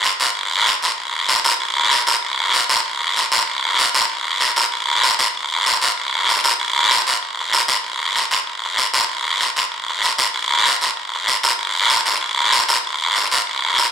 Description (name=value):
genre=latin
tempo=192 BPM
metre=4/4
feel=straight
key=none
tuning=none
part: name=guiro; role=percussion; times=0.0-13.9 s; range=none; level=-15 LUFS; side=equal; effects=none
room=wet large studio reverb, RT60 0.9 s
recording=band playing live in one room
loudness=-15 LUFS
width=side -8 dB against mid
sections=0.0-8.5 A section; 8.5-13.9 B section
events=none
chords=none